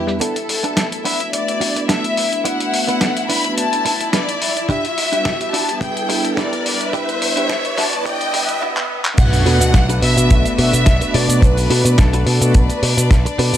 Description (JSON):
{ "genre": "nu-disco, nu disco", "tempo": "107 BPM", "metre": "4/4", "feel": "swing 53% on 16ths", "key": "unclear", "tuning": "A4 = 440 Hz", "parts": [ { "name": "warm symphonic violin section", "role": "melody", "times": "0.0-13.4 s", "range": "G4 to B5", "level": "-22 LUFS", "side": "left 1 dB", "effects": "tape echo" }, { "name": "warm analog pad", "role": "accompaniment", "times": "0.0-12.6 s", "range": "G3 to B4", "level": "-24 LUFS", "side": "equal", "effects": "chorus, sidechain pumping" }, { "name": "warm studio string section", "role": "sustained chords", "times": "0.0-13.6 s", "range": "D4 to E5", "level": "-27 LUFS", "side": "left 3 dB", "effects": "sidechain pumping, low-pass filter" }, { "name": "picked electric bass with an envelope filter", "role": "bass", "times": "0.0-0.2, 9.2-13.6 s", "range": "B1 to B2", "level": "-16 LUFS", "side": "equal", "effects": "none" }, { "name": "dusty soul sampler-style drum kit", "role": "drums", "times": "0.1-13.6 s", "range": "crash cymbal, handclaps, hi-hat, shaker, snare drum", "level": "-21 LUFS", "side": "left 1 dB", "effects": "low-pass filter on perc, studio reverb, low-pass filter on hats, low-pass filter on snare, low-pass filter on cymbals" }, { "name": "direct-recorded clean electric guitar", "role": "riff", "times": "0.2-13.6 s", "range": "B3 to D5", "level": "-25 LUFS", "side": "right 3 dB", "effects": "wide subtle chorus, low-pass filter" }, { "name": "riser, swell and sub drop", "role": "sound effects", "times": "1.7-11.4 s", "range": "none", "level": "-25 LUFS", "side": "equal", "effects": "none" }, { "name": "kick drum", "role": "drums", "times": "4.7-13.2 s", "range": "none", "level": "-14 LUFS", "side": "equal", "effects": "studio reverb" } ], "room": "light reverb, small room ambience", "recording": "high-pass filter", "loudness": "-14 LUFS", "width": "side -11 dB against mid", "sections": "0.2-9.2 A section; 9.2-13.6 B section", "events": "build-up 0.2-9.2; filter sweep on clean electric guitar 0.2-9.2; filter sweep on analog synth pad 0.2-9.2; filter sweep on string section 0.2-9.2; riser 1.7-8.6; swell 8.1-9.2; drum fill 8.8-9.2; drop 9.2-13.6; impact 9.2-11.4", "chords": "0.2 Bm7; 4.7 Em7; 9.2 Bm7" }